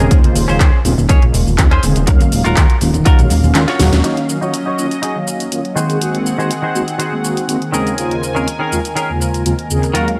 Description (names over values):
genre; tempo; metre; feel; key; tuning
nu-disco, nu disco; 122 BPM; 4/4; straight; unclear; A4 = 440 Hz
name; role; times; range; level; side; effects
mellow synth brass; accompaniment; 0.0-10.2 s; Eb2 to F5; -21 LUFS; equal; chorus, tremolo, sidechain pumping, analog delay
direct-recorded clean electric guitar; riff; 0.0-10.1 s; Eb3 to Db5; -23 LUFS; equal; lush chorus, low-pass filter, analog delay
fat analog bass; bass; 0.0-4.0 s; Eb1 to Eb2; -17 LUFS; equal; sidechain pumping
house drum kit; drums; 0.0-10.2 s; handclaps, hi-hat, shaker, snare drum; -24 LUFS; equal; overdrive
electronic kick drum; drums; 0.1-3.2 s; none; -13 LUFS; equal; overdrive
congas; percussion; 0.2-3.9 s; none; -25 LUFS; equal; none
lush unison pad; sustained chords; 4.0-10.2 s; Eb3 to Ab5; -26 LUFS; equal; chorus, phaser, sidechain pumping
room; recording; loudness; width
light reverb; none; -15 LUFS; mono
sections
0.0-4.0 A section; 4.0-10.2 B section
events
kick drops out 3.6-4.0; drum fill 3.6-4.0; band accent 3.9; filter sweep on clean electric guitar 4.0-10.2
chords
0.0 Bbm7/Eb; 2.1 Gbmaj7/Eb; 5.8 Ab7/Eb; 7.7 Bbm7/Eb